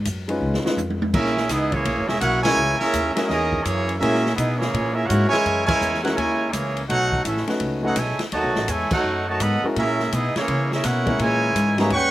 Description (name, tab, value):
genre	jazz, big band swing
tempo	167 BPM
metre	4/4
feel	swing 64% on 8ths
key	F# major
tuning	A4 = 439 Hz
part	upright bass	bass	0.0-12.1 s	E1 to C#3	-25 LUFS	equal	none
part	open jazz drum kit	drums	0.1-12.0 s	crash cymbal, hi-hat, kick drum, ride cymbal, snare drum, toms	-28 LUFS	equal	none
part	warm baby grand piano	accompaniment	0.3-11.9 s	G3 to B4	-25 LUFS	left 1 dB	none
part	bright trumpet section	melody	1.1-12.1 s	A#3 to C#6	-22 LUFS	right 1 dB	none
part	clear trombone section	second line	1.1-12.1 s	C#3 to F#4	-27 LUFS	right 1 dB	none
room	little or no reverb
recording	recorded outdoors, with no room sound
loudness	-19 LUFS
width	side -15 dB against mid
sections	0.0-1.1 A section; 1.1-12.1 B section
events	drum fill 0.4-1.1; band accent 2.4, 5.6, 8.9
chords	0.4 C#9; 1.1 F#9; 6.9 B9; 9.8 F#9; 11.2 A#m7b5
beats	0.06 0.42 0.78 | 1.14 1.50 1.86 2.22 | 2.58 2.94 3.30 3.66 | 4.01 4.38 4.73 5.09 | 5.45 5.81 6.17 6.53 | 6.89 7.25 7.61 7.97 | 8.33 8.69 9.04 9.40 | 9.76 10.12 10.48 10.84 | 11.20 11.56 11.92